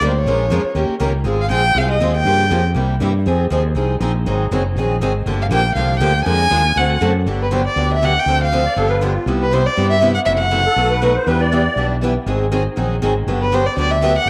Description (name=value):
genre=acoustic string swing (jazz manouche)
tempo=240 BPM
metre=4/4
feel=swing 55% on 8ths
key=G major from 7.3 s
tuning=A4 = 437 Hz
part: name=warm violin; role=melody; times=0.0-2.6, 5.4-11.1, 13.4-14.3 s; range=B4 to Ab5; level=-20 LUFS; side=equal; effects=none
part: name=picked steel-string acoustic guitar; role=accompaniment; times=0.0-14.3 s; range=B2 to Bb4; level=-24 LUFS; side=equal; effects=none
part: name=picked steel-string acoustic guitar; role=accompaniment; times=0.0-14.3 s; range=B2 to B4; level=-28 LUFS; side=equal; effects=none
part: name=mellow fretless electric bass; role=bass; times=0.0-14.3 s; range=Gb1 to G2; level=-21 LUFS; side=equal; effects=none
part: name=musette accordion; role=second line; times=8.6-11.9 s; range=F4 to D5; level=-22 LUFS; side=equal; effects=none
room=wet spring reverb, RT60 1.3 s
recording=none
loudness=-17 LUFS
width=mono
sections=0.0-7.3 A section; 7.3-14.3 B section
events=none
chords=0.3 Bbm7; 0.8 Eb7; 1.3 Ab6; 2.3 Gm7b5; 2.8 C7; 3.3 Fm7; 4.3 Ab9; 5.3 Gm7; 6.3 Bb7; 6.8 D7; 7.3 Gmaj7; 8.3 Dm7; 8.8 G7; 9.3 Cmaj7; 10.3 F#m7b5; 10.8 B7; 11.3 Em7; 12.3 Ab9; 13.3 Gmaj7